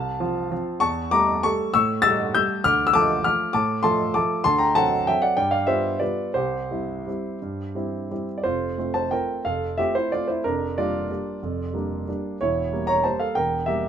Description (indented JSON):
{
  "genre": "classical, piano waltz",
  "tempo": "161-209 BPM",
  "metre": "3/4",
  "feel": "rubato",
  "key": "F major",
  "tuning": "A4 = 441 Hz",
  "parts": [
    { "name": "warm concert grand piano", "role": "solo", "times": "0.0-13.9 s", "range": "E1 to A6", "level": "-21 LUFS", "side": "equal", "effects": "none" }
  ],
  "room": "light reverb",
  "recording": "minimal, uncompressed stereo recording",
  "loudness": "-21 LUFS",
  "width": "side -8 dB against mid",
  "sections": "0.0-8.5 A section; 8.5-13.9 B section",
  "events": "none",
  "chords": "0.0 F; 0.8 A7/E; 2.6 Dm; 4.5 D7; 5.4 G7; 6.4 C; 8.5 F; 10.4 Gm7/F; 12.4 Edim7"
}